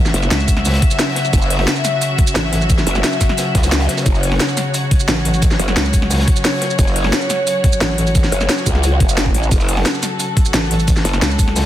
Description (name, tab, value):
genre	dark technical drum and bass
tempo	176 BPM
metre	4/4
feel	straight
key	F# minor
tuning	A4 = 440 Hz
part	dark studio string section	sustained chords	0.0-11.7 s	C#3 to E5	-20 LUFS	left 1 dB	sidechain pumping
part	metallic wobble bass	bass	0.0-2.9, 5.1-8.3, 10.5-11.7 s	A1 to C#2	-18 LUFS	equal	distortion, chorus
part	crunchy breakbeat drum kit	drums	0.0-11.6 s	hi-hat, snare drum	-29 LUFS	equal	none
part	growl bass	bass	0.1-11.2 s	F#1 to C#2	-17 LUFS	equal	chorus, overdrive
part	drum and bass drum kit	drums	0.1-11.6 s	hi-hat, shaker, snare drum	-19 LUFS	equal	small room reverb
part	electronic kick drum	drums	0.5-11.5 s	none	-15 LUFS	equal	small room reverb
room	light reverb, small room reverb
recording	dense, heavily limited modern master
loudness	-13 LUFS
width	side -12 dB against mid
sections	0.0-11.7 A section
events	none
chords	0.0 F#5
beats	0.31 0.65 0.99 | 1.33 1.68 2.02 2.36 | 2.70 3.04 3.38 3.72 | 4.06 4.40 4.74 5.08 | 5.42 5.77 6.11 6.45 | 6.79 7.13 7.47 7.81 | 8.15 8.49 8.83 9.18 | 9.52 9.86 10.20 10.54 | 10.88 11.22 11.56